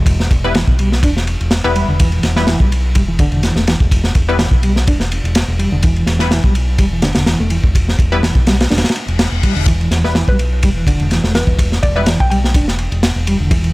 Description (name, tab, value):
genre	breakbeat, breaks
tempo	125 BPM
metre	4/4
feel	swing 55% on 16ths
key	E minor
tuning	A4 = 440 Hz
part	overdriven fingered electric bass	bass	0.0-13.7 s	E1 to B1	-17 LUFS	equal	none
part	crunchy breakbeat drum kit	drums	0.1-13.7 s	kick drum, ride cymbal, snare drum	-15 LUFS	equal	none
part	filtered dub chord stab	stabs	0.4-12.0 s	G3 to B4	-21 LUFS	left 2 dB	chorus, dub echo
part	mellow reed electric piano	riff	0.6-13.7 s	D3 to D4	-20 LUFS	equal	fast tremolo, vintage 12-bit sampler grit
part	reverse cymbal	sound effects	9.0-9.7 s	none	-25 LUFS	left 7 dB	none
part	mallet-like synth pluck	melody	10.3-12.4 s	B4 to G5	-23 LUFS	equal	chorus, small speaker sound, dub echo
room	small room ambience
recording	none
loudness	-12 LUFS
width	side -21 dB against mid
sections	0.0-13.7 A section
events	reverse cymbal 9.0-9.7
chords	0.0 Em